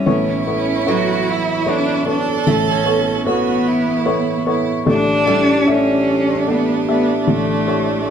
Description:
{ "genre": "acoustic folk-pop ballad", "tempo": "50 BPM (dotted quarters)", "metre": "6/8", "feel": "straight", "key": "unclear", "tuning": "A4 = 438 Hz", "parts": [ { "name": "warm cello", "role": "melody", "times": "0.0-8.1 s", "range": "A3 to F#4", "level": "-19 LUFS", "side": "left 1 dB", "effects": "none" }, { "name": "felt-muted upright piano", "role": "accompaniment", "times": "0.0-8.1 s", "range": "A1 to E5", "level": "-19 LUFS", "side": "left 2 dB", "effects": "none" }, { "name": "clear violin", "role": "second line", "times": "0.1-8.1 s", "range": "D4 to A4", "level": "-21 LUFS", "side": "right 8 dB", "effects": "none" }, { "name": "picked steel-string acoustic guitar", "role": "arpeggios", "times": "0.9-6.8 s", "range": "F#3 to C#4", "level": "-24 LUFS", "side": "right 4 dB", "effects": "none" } ], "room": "moderate large studio reverb, RT60 1.4 s", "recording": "band playing live in one room", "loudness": "-14 LUFS", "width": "side -8 dB against mid", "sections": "0.0-4.9 A section; 4.9-8.1 B section", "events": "none", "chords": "0.1 Aadd9; 4.9 A7sus4" }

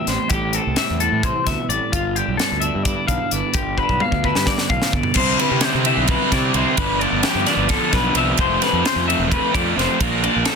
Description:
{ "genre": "math rock and midwest emo", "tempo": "260 BPM (eighths)", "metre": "7/8", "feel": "straight", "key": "C major", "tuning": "A4 = 438 Hz", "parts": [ { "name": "twelve-string electric guitar", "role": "accompaniment", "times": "0.0-6.8 s", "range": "E2 to G4", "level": "-26 LUFS", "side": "right 8 dB", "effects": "none" }, { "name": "electric guitar through a small old amp", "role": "arpeggios", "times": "0.0-10.6 s", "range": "F4 to F5", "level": "-22 LUFS", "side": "left 7 dB", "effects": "wide subtle chorus" }, { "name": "fuzz fingered electric bass", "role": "bass", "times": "0.1-10.4 s", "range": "E1 to C3", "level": "-25 LUFS", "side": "equal", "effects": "overdrive" }, { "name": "crisp fusion drum kit", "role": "drums", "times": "0.1-10.6 s", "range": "crash cymbal, hi-hat, kick drum, ride cymbal, snare drum, toms", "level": "-22 LUFS", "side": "equal", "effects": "soft clipping on snare" }, { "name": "crunchy overdriven guitar", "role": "riff", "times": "5.2-10.6 s", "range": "F2 to E4", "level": "-20 LUFS", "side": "right 2 dB", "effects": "none" } ], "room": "light reverb", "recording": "dense, heavily limited modern master", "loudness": "-16 LUFS", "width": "side -5 dB against mid", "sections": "0.0-5.2 A section; 5.2-10.6 B section", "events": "drum fill 3.8-5.2", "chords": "0.0 Am7; 1.9 G7; 5.2 Cmaj9; 6.8 G9; 8.4 Fmaj7; 10.0 Bbmaj7" }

